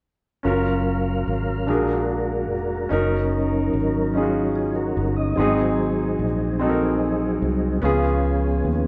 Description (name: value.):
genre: gospel.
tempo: 49 BPM (dotted quarters).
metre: 6/8.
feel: straight.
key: F# major.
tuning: A4 = 438 Hz.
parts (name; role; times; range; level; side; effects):
warm grand piano; accompaniment; 0.4-8.9 s; G#2 to A#4; -27 LUFS; equal; none.
mellow tonewheel organ; sustained chords; 0.4-8.9 s; E#3 to E#5; -26 LUFS; equal; fast rotary speaker, chorus vibrato.
fingered electric bass; bass; 0.5-8.9 s; E#1 to D#2; -28 LUFS; equal; none.
room: moderate large studio reverb, RT60 1.2 s.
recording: band playing live in one room.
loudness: -22 LUFS.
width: mono.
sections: 0.5-8.9 A section.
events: none.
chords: 0.5 F#maj7; 1.7 A#7b13; 2.9 D#m7/F#; 5.4 G#7; 7.8 C#7.